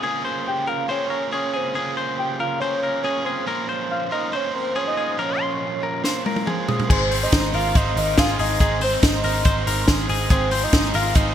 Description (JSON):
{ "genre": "jangly indie pop", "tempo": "140 BPM", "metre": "4/4", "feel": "straight", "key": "Ab major", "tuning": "A4 = 439 Hz", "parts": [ { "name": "overdriven electric guitar", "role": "accompaniment", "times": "0.0-11.3 s", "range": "Ab2 to C5", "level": "-28 LUFS", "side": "right 6 dB", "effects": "none" }, { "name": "direct-recorded clean electric guitar", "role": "arpeggios", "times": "0.0-11.3 s", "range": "Ab4 to C6", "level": "-26 LUFS", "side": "left 4 dB", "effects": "none" }, { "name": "warbly nostalgic lead", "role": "melody", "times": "0.5-11.3 s", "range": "C5 to G5", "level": "-26 LUFS", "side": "equal", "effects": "chorus" }, { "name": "compact cocktail drum kit", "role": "drums", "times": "6.0-11.3 s", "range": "crash cymbal, hi-hat, kick drum, ride cymbal, snare drum, toms", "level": "-20 LUFS", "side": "equal", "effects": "gated reverb" }, { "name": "warm studio violin section", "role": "second line", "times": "6.9-11.3 s", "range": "C4 to F4", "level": "-31 LUFS", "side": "left 2 dB", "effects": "none" }, { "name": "vintage muted picked electric bass", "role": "bass", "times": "6.9-11.3 s", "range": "Ab1", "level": "-25 LUFS", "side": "equal", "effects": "none" } ], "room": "light reverb, small room reverb", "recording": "bright 1980s-style digital production", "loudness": "-19 LUFS", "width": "side -10 dB against mid", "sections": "0.0-6.9 A section; 6.9-11.3 B section", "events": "drum fill 6.0-6.9", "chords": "0.0 Db6; 3.5 Bbmadd9; 6.9 Ab; 10.3 Fm/Ab" }